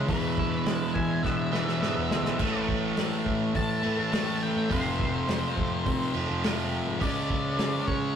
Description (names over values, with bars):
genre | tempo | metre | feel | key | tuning
quiet-loud alternative rock | 104 BPM | 4/4 | straight | unclear | A4 = 441 Hz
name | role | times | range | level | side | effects
twangy electric guitar | arpeggios | 0.0-2.4 s | E2 to E4 | -32 LUFS | right 2 dB | none
biting overdriven guitar | riff | 0.0-8.2 s | E2 to C#4 | -32 LUFS | right 3 dB | spring reverb
thick fuzz guitar | riff | 0.0-8.2 s | E2 to C#4 | -30 LUFS | left 2 dB | distortion
fuzz fingered electric bass | bass | 0.0-8.1 s | F1 to E3 | -35 LUFS | equal | overdrive
octave-fuzz lead guitar | melody | 0.1-8.2 s | B4 to A5 | -33 LUFS | left 1 dB | distortion
loose indie drum kit | drums | 0.1-8.0 s | crash cymbal, hi-hat, kick drum, snare drum | -31 LUFS | equal | none
room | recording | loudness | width
moderate booth ambience, RT60 0.2 s | rough rehearsal-room recording, tube saturation | -25 LUFS | side -8 dB against mid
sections
0.0-8.2 A section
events
lead electric guitar solo 0.0-8.2; drum fill 1.2-2.4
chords
0.1 E; 2.4 A5; 4.7 F5; 7.0 C#5